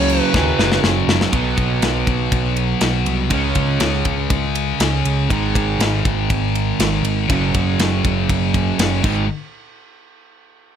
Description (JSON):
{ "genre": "hard rock", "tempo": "120 BPM", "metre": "4/4", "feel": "straight", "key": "unclear", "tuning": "A4 = 439 Hz", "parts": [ { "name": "bluesy overdriven lead guitar", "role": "melody", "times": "0.0-0.8 s", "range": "C#5", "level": "-21 LUFS", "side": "equal", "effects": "distortion, slapback echo" }, { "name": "heavy high-gain guitar", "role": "riff", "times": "0.0-9.2 s", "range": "F#2 to C#4", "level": "-23 LUFS", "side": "left 15 dB", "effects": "distortion" }, { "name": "overdriven semi-hollow guitar", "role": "riff", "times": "0.0-9.2 s", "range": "F#2 to C#4", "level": "-21 LUFS", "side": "right 10 dB", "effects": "none" }, { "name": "overdriven picked electric bass", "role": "bass", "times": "0.0-9.3 s", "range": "F#1 to D#2", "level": "-21 LUFS", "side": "left 1 dB", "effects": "none" }, { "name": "tight metal drum kit", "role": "drums", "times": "0.1-9.2 s", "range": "crash cymbal, kick drum, ride cymbal, snare drum", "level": "-21 LUFS", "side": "left 1 dB", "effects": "none" } ], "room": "little or no reverb", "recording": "none", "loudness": "-15 LUFS", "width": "side -8 dB against mid", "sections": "0.0-1.3 A section; 1.3-9.3 B section; 9.3-10.8 C section", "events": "drum fill 0.3-1.3", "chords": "0.0 F#5; 1.3 B5; 3.3 C#5; 5.3 G#5; 7.3 F#5; 9.0 G#5; 9.3 N.C." }